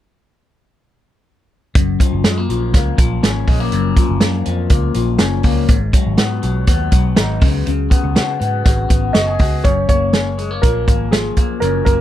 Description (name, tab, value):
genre	jangly indie pop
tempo	122 BPM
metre	4/4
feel	straight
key	unclear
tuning	A4 = 445 Hz
part	electric guitar through a small old amp	arpeggios	1.8-12.0 s	F#2 to G#4	-20 LUFS	left 7 dB	phaser, slapback echo
part	vintage muted fingered electric bass	bass	1.8-12.0 s	F#1 to C#3	-19 LUFS	equal	none
part	vintage drum kit	drums	1.8-12.0 s	hi-hat, kick drum, snare drum	-14 LUFS	right 1 dB	none
part	warm upright piano	melody	9.1-12.0 s	G#4 to D#5	-19 LUFS	right 2 dB	slapback echo
room	little or no reverb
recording	dry, close 1970s-style studio recording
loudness	-13 LUFS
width	side -12 dB against mid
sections	1.7-9.6 A section; 9.6-12.0 B section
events	none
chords	1.7 F#maj7; 5.7 G#m7; 7.4 C#7sus4; 9.6 F#maj7